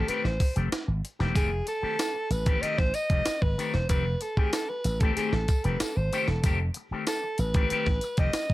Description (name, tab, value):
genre	funk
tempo	94 BPM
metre	4/4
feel	straight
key	F mixolydian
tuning	A4 = 438 Hz
part	breathy alto saxophone	melody	0.0-8.5 s	Ab4 to Eb5	-31 LUFS	equal	plate reverb
part	electric guitar with an envelope filter	accompaniment	0.0-8.5 s	Eb3 to G4	-32 LUFS	left 5 dB	plate reverb
part	slap bass with an envelope filter	bass	0.1-8.5 s	E1 to A1	-28 LUFS	equal	none
part	breakbeat sampler-style drum kit	drums	0.1-8.5 s	hi-hat, kick drum, snare drum	-27 LUFS	equal	none
part	tambourine	percussion	1.4-8.5 s	none	-43 LUFS	left 4 dB	none
room	little or no reverb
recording	none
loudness	-24 LUFS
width	side -17 dB against mid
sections	0.0-8.5 A section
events	alto saxophone solo 0.0-8.5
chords	0.0 F9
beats	0.09 0.72 | 1.36 1.99 2.63 3.26 | 3.90 4.53 5.17 5.80 | 6.44 7.07 7.71 8.34